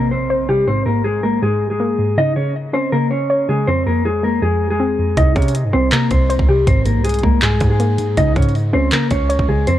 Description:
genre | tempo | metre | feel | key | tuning
hip hop, trap | 160 BPM | 4/4 | half-time | unclear | A4 = 443 Hz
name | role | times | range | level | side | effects
mellow electric guitar | melody | 0.0-9.8 s | G3 to Eb5 | -18 LUFS | left 1 dB | low-pass filter, ping-pong delay
soft round pluck | accompaniment | 0.0-9.8 s | F2 to Db5 | -19 LUFS | equal | chorus, low-pass filter
impact | sound effects | 0.0-0.7 s | none | -34 LUFS | equal | none
hard-hitting 808-style bass | bass | 5.2-9.7 s | Ab1 to C3 | -19 LUFS | equal | none
trap drum kit | drums | 5.2-9.8 s | handclaps, hi-hat, kick drum | -18 LUFS | equal | none
room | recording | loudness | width
digital ambience | worn, warbling old tape, cassette tape, warbly pitch drift | -14 LUFS | side -12 dB against mid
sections
0.0-9.8 A section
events
impact 0.0-0.7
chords
0.0 C5; 0.7 Abadd9; 2.2 Db5; 3.7 Fm; 5.2 Cm; 6.7 Abadd9; 8.2 Db5

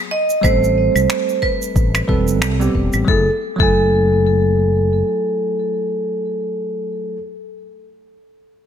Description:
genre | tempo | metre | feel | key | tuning
sunset chillout | 91 BPM | 4/4 | swing 57% on 16ths | unclear | A4 = 439 Hz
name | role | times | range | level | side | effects
vibraphone with hard mallets | melody | 0.1-7.2 s | A4 to D#5 | -19 LUFS | right 1 dB | ping-pong delay
shaker, claves and finger snaps | drums | 0.3-3.0 s | none | -24 LUFS | right 1 dB | none
bell-like tine electric piano | accompaniment | 0.4-7.2 s | F#3 to G#5 | -22 LUFS | moving between left 6 dB and right 5 dB | auto-pan, ping-pong delay
fretless electric bass | bass | 0.4-5.0 s | E1 to C2 | -18 LUFS | equal | tube saturation, analog chorus
electronic kick drum | drums | 0.4-3.8 s | none | -19 LUFS | equal | none
room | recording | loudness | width
light reverb, studio reverb | none | -15 LUFS | side -8 dB against mid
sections
0.0-3.1 A section; 3.1-5.7 B section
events
none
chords
0.4 Am9; 3.1 F#m9

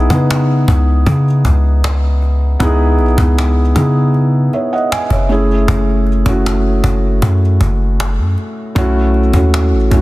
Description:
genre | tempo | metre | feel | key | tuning
contemporary R&B | 78 BPM | 4/4 | straight | F# dorian | A4 = 440 Hz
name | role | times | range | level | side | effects
felt-muted upright piano | accompaniment | 0.0-10.0 s | A3 to G#5 | -16 LUFS | equal | none
warm 808-style bass | bass | 0.0-10.0 s | F#1 to C#3 | -12 LUFS | equal | none
cajon | drums | 0.1-10.0 s | none | -19 LUFS | equal | none
room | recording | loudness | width
small room ambience | dense, heavily limited modern master | -11 LUFS | side -18 dB against mid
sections
0.0-10.0 A section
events
none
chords
0.0 C#m7; 5.3 F#m7; 8.8 B7sus4

